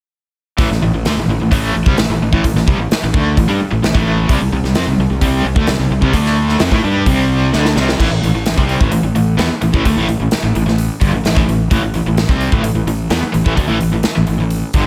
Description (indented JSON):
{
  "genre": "hard rock",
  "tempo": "129 BPM",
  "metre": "4/4",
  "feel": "straight",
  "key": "A minor",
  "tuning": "A4 = 443 Hz",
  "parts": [
    { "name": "cranked stack guitar", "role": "riff", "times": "0.6-14.9 s", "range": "G2 to G4", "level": "-21 LUFS", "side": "equal", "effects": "overdrive, tremolo" },
    { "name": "overdriven semi-hollow guitar", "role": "riff", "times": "0.6-14.9 s", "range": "G2 to G4", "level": "-21 LUFS", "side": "equal", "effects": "none" },
    { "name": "fuzz fingered electric bass", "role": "bass", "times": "0.6-14.9 s", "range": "G1 to A2", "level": "-21 LUFS", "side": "equal", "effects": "overdrive" },
    { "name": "big rock drum kit", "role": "drums", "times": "0.6-14.8 s", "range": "crash cymbal, hi-hat, kick drum, snare drum", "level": "-20 LUFS", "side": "equal", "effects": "none" }
  ],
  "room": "studio reverb",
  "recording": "none",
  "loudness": "-15 LUFS",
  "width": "mono",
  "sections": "0.6-8.0 A section; 8.0-14.9 B section",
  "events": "drum fill 7.5-8.0",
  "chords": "0.6 Am; 4.3 C5; 6.1 D5; 6.6 C5; 8.0 Am",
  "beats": "| 0.59 1.05 1.51 1.98 | 2.44 2.90 3.36 3.83 | 4.29 4.75 5.22 5.68 | 6.14 6.61 7.07 7.53 | 8.00 8.46 8.93 9.39 | 9.86 10.32 10.79 11.25 | 11.71 12.18 12.64 13.11 | 13.58 14.04 14.51"
}